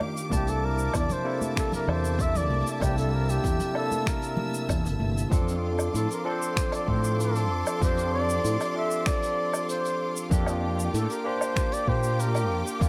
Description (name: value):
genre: sunset chillout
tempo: 96 BPM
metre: 4/4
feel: straight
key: F major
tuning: A4 = 437 Hz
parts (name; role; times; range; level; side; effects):
- barky tine electric piano; accompaniment; 0.0-12.9 s; C3 to A5; -34 LUFS; equal; digital delay
- clear symphonic string section; sustained chords; 0.0-12.9 s; Bb3 to E6; -38 LUFS; equal; none
- jazz brush drum kit; drums; 0.0-12.9 s; finger snaps, hi-hat, shaker, woodblock; -37 LUFS; equal; none
- congas; percussion; 0.0-5.1 s; none; -38 LUFS; equal; none
- breathy flugelhorn; melody; 0.3-12.7 s; G4 to E5; -33 LUFS; equal; digital delay
- fretless electric bass; bass; 0.3-12.9 s; G1 to Bb2; -30 LUFS; equal; ensemble chorus
- electronic kick drum; drums; 0.3-12.9 s; none; -30 LUFS; equal; none
room: light reverb, studio ambience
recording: none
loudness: -27 LUFS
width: mono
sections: 0.0-5.3 A section; 5.3-12.9 B section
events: none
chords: 0.3 C13; 5.3 F6; 10.3 Bb6/F